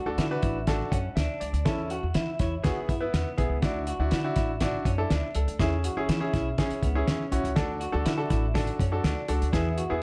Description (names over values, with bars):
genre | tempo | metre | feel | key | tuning
uptempo 1960s-style soul | 122 BPM | 4/4 | straight | unclear | A4 = 439 Hz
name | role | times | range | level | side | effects
electric guitar through a small old amp | riff | 0.0-9.9 s | B3 to F#4 | -37 LUFS | equal | spring reverb
bright grand piano | accompaniment | 0.1-10.0 s | B3 to F#5 | -33 LUFS | equal | none
upright bass | bass | 0.1-10.0 s | A1 to E3 | -32 LUFS | equal | none
cloth-damped thuddy drum kit | drums | 0.2-9.9 s | hi-hat, kick drum, snare drum | -31 LUFS | equal | none
room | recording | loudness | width
little or no reverb | dark, warm production | -27 LUFS | mono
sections
0.0-10.0 A section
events
none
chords
0.0 D; 1.7 A/E; 2.6 E; 3.6 Dadd9; 5.6 E6; 7.6 D